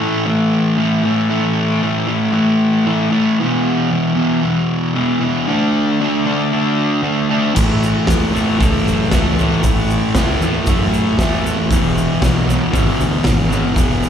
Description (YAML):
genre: garage rock duo or trio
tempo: 115 BPM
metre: 4/4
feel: straight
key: unclear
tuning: A4 = 439 Hz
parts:
  - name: fuzz guitar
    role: riff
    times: 0.0-14.1 s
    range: E2 to D4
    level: -15 LUFS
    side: equal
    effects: distortion
  - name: growling picked electric bass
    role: bass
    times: 7.6-14.1 s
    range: E1 to F#2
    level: -20 LUFS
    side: equal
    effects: overdrive
  - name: raw garage drum kit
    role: drums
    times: 7.6-13.9 s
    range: crash cymbal, hi-hat, kick drum, snare drum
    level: -19 LUFS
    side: equal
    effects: none
  - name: tube shaker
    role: percussion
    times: 7.6-14.1 s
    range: none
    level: -34 LUFS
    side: right 3 dB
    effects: none
room: little or no reverb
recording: live gig heard through the venue's PA, club reverb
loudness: -14 LUFS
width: side -8 dB against mid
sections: 0.0-14.1 A section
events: none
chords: 0.0 A5; 3.4 E5; 5.5 D5; 7.6 A; 11.7 E